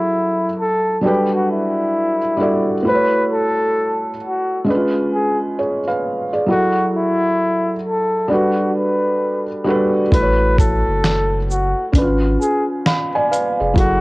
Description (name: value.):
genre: lo-fi hip hop.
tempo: 66 BPM.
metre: 4/4.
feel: swing 63% on 16ths.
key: unclear.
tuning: A4 = 444 Hz.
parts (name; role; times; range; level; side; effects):
breathy flugelhorn; melody; 0.0-14.0 s; E4 to B4; -19 LUFS; left 1 dB; low-pass filter.
felt-muted upright piano; accompaniment; 0.0-14.0 s; F#3 to B5; -18 LUFS; right 1 dB; cassette tape, low-pass filter.
warm sub bass; bass; 10.1-14.0 s; E#1 to A1; -20 LUFS; equal; none.
lo-fi sampler-style drum kit; drums; 10.1-14.0 s; hi-hat, kick drum, shaker, snare drum; -17 LUFS; equal; cassette tape.
room: moderate spring reverb, RT60 2.5 s.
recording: home recording on cassette.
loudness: -15 LUFS.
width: side -22 dB against mid.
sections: 0.0-14.0 A section.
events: none.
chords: 0.0 F#m9; 1.0 Em11/G; 2.8 A6; 4.7 C#7/G#; 6.5 F#m9; 8.3 Gmaj9; 10.1 A6; 11.9 C#7/G#.